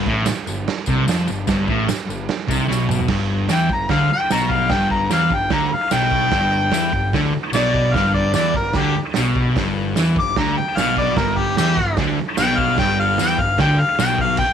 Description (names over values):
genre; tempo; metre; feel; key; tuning
garage rock duo or trio; 148 BPM; 4/4; straight; G major; A4 = 440 Hz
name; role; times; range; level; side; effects
fuzz guitar; riff; 0.0-14.4 s; G2 to F3; -20 LUFS; equal; distortion
fuzz picked electric bass; bass; 0.0-14.4 s; G1 to F2; -27 LUFS; left 1 dB; overdrive, tube saturation
raw garage drum kit; drums; 0.1-14.5 s; crash cymbal, hi-hat, kick drum, snare drum, toms; -23 LUFS; right 4 dB; none
tambourine; percussion; 0.3-14.1 s; none; -33 LUFS; left 13 dB; none
warm harmonica; melody; 3.5-14.5 s; G4 to D6; -20 LUFS; left 2 dB; overdrive
room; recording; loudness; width
light reverb, small room ambience; 1960s-style stereo; -16 LUFS; side -8 dB against mid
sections
0.0-3.1 A section; 3.1-14.5 B section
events
drum fill 2.7-3.1; harmonica solo 3.1-14.5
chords
0.0 G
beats
0.27 0.67 1.07 | 1.48 1.88 2.29 2.69 | 3.09 3.50 3.90 4.31 | 4.71 5.12 5.52 5.92 | 6.33 6.73 7.14 7.54 | 7.95 8.35 8.75 9.16 | 9.56 9.96 10.37 10.77 | 11.18 11.58 11.98 12.39 | 12.79 13.19 13.60 14.00 | 14.40